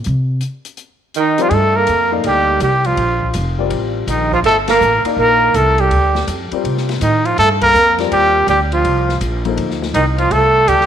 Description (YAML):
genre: modal jazz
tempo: 164 BPM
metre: 4/4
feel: swing 65% on 8ths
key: G minor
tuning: A4 = 440 Hz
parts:
  - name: upright bass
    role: bass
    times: 0.0-10.9 s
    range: F1 to C3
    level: -19 LUFS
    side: equal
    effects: none
  - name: open jazz drum kit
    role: drums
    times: 0.0-10.9 s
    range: hi-hat, kick drum, ride cymbal, snare drum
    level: -28 LUFS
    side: left 5 dB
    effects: none
  - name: warm trumpet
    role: melody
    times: 1.2-10.9 s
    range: Eb4 to Bb4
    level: -14 LUFS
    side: equal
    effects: none
  - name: breathy tenor saxophone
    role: second line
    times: 1.2-10.9 s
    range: Eb3 to Bb3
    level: -20 LUFS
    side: right 9 dB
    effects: none
  - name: warm grand piano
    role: accompaniment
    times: 1.4-9.9 s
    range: F3 to F5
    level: -22 LUFS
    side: left 8 dB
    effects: none
room: moderate echo chamber reverb, RT60 1.8 s, small room reverb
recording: 1960s-style stereo with parts hard left and right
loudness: -12 LUFS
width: side -9 dB against mid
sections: 0.0-1.5 A section; 1.5-10.9 B section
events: upright bass solo 0.0-1.5; band accent 4.6, 7.6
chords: 0.0 Cm; 1.5 Gm11; 7.4 Cm11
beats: | 0.04 0.41 0.78 1.14 | 1.51 1.88 2.24 2.61 | 2.98 3.35 3.71 4.08 | 4.45 4.81 5.18 5.55 | 5.91 6.28 6.65 7.01 | 7.38 7.75 8.12 8.48 | 8.85 9.21 9.58 9.95 | 10.31 10.68